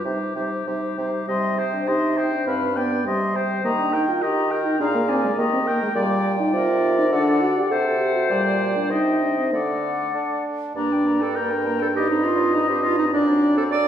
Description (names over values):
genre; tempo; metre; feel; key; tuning
quick classical-period movement for wind quintet; 96-105 BPM; 2/4; rubato; C minor, G minor from 6.0 s; A4 = 440 Hz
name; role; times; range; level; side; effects
concert flute; melody; 0.0-13.9 s; C5 to C6; -29 LUFS; left 4 dB; none
warm oboe; second line; 0.0-13.9 s; G4 to G5; -27 LUFS; left 4 dB; none
clear clarinet; accompaniment; 0.0-13.9 s; D4 to D5; -25 LUFS; right 3 dB; none
dark French horn; accompaniment; 0.0-13.9 s; G3 to A4; -25 LUFS; equal; none
clear bassoon; bass; 0.1-13.9 s; F#2 to D4; -25 LUFS; right 1 dB; none
room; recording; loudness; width
wet recital hall reverb, RT60 1.7 s; heard from further back in the room; -19 LUFS; side -9 dB against mid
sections
0.0-1.3 A section; 1.3-10.8 A section; 10.8-13.9 B section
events
none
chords
0.0 Cm; 2.5 G7; 3.1 Cm; 3.6 Eb; 4.8 Bb7; 5.4 Eb; 6.0 Gm/Bb; 6.5 C5; 7.1 D; 7.7 F#dim/C; 8.3 Gm/Bb; 8.9 Cm; 9.5 D; 10.8 Gm; 12.0 Cm/G; 13.1 D7/F#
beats
| 0.05 0.67 | 1.28 1.88 | 2.47 3.06 | 3.65 4.22 | 4.80 5.38 | 5.95 6.53 | 7.12 7.70 | 8.30 8.90 | 9.52 10.14 | 10.76 11.36 | 11.96 12.54 | 13.13 13.72